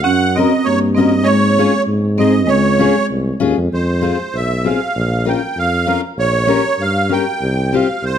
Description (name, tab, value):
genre	alpine folk, alpine dance band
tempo	98 BPM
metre	2/4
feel	straight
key	Db major, F harmonic minor from 3.7 s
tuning	A4 = 440 Hz
part	musette accordion	melody	0.0-8.2 s	C5 to G5	-18 LUFS	right 3 dB	none
part	marimba with medium mallets	second line	0.0-3.1 s	Ab3 to Db4	-17 LUFS	right 1 dB	none
part	warm tuba	bass	0.0-8.2 s	Bb1 to Ab2	-18 LUFS	equal	none
part	fingerpicked steel-string acoustic guitar	accompaniment	0.4-7.9 s	C4 to Bb4	-19 LUFS	left 7 dB	none
room	moderate recital hall reverb, RT60 1.6 s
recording	close, detailed microphones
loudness	-13 LUFS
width	side -9 dB against mid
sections	0.0-3.7 A section; 3.7-8.2 B section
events	none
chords	0.1 Gb; 1.3 Db/Ab; 1.9 Ab; 2.5 Db; 3.7 Fm; 5.0 Bbm; 6.2 Gdim/Bb; 7.4 Csus4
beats	| 0.06 0.67 | 1.28 1.88 | 2.49 3.11 | 3.73 4.35 | 4.96 5.57 | 6.18 6.80 | 7.41 8.03